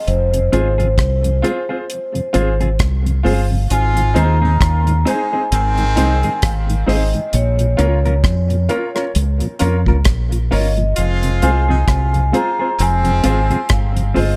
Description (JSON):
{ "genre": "roots reggae", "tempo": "66 BPM", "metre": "4/4", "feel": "swing 58% on 16ths", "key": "F minor", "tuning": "A4 = 444 Hz", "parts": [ { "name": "vibraphone with medium mallets", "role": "melody", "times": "0.0-14.4 s", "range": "C5 to Bb5", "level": "-24 LUFS", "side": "equal", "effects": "dub echo" }, { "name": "deep dub fingered electric bass", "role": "bass", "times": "0.1-14.4 s", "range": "F1 to F2", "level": "-18 LUFS", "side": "equal", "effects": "none" }, { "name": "deep reggae drum kit", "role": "drums", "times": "0.1-14.4 s", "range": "hi-hat, kick drum, rim click", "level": "-22 LUFS", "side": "equal", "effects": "none" }, { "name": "mellow tonewheel organ", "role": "accompaniment", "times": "0.3-14.2 s", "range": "F2 to F4", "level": "-28 LUFS", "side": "equal", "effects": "chorus vibrato, slow rotary speaker, dub echo" }, { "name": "mellow electric guitar", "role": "accompaniment", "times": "0.5-14.3 s", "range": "C4 to Bb4", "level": "-26 LUFS", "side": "equal", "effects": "dub echo" }, { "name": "warm upright piano", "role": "stabs", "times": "0.5-14.3 s", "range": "Eb4 to Db5", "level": "-26 LUFS", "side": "equal", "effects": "none" }, { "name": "clear horn section", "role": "second line", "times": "3.7-14.1 s", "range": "Eb3 to F4", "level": "-28 LUFS", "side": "equal", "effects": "dub echo" } ], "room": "small room ambience", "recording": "none", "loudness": "-16 LUFS", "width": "mono", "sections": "0.0-14.4 A section", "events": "none", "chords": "0.0 Fm; 3.7 Ab; 7.3 Bbm; 11.0 Fm", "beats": "| 0.07 0.97 1.88 2.79 | 3.70 4.61 5.52 6.42 | 7.33 8.24 9.15 10.06 | 10.97 11.88 12.79 13.70" }